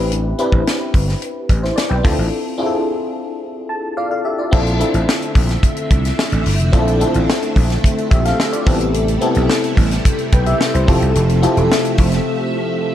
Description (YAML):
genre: polished 1980s jazz-funk pop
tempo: 109 BPM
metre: 4/4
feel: straight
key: unclear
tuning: A4 = 438 Hz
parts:
  - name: FM electric piano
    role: accompaniment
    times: 0.0-12.9 s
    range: B3 to A5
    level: -19 LUFS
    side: left 2 dB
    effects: ensemble chorus
  - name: vintage slap bass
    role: bass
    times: 0.0-12.2 s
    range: E1 to D2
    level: -17 LUFS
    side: equal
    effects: none
  - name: tight funk drum kit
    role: drums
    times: 0.1-12.2 s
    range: crash cymbal, hi-hat, kick drum, snare drum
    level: -17 LUFS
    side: equal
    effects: none
  - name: string machine, violins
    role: sustained chords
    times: 4.5-12.9 s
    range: C3 to E5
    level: -23 LUFS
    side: right 1 dB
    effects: ensemble chorus
room: light reverb, small room reverb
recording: dark, warm production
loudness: -14 LUFS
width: side -11 dB against mid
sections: 0.0-4.5 A section; 4.5-12.9 B section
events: break 2.3-4.5, 12.3-12.9; FM electric piano fill 3.4-4.5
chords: 0.0 Am11; 2.0 Dm9; 4.5 Bbmaj9#11; 8.7 Am7; 10.9 Fmaj7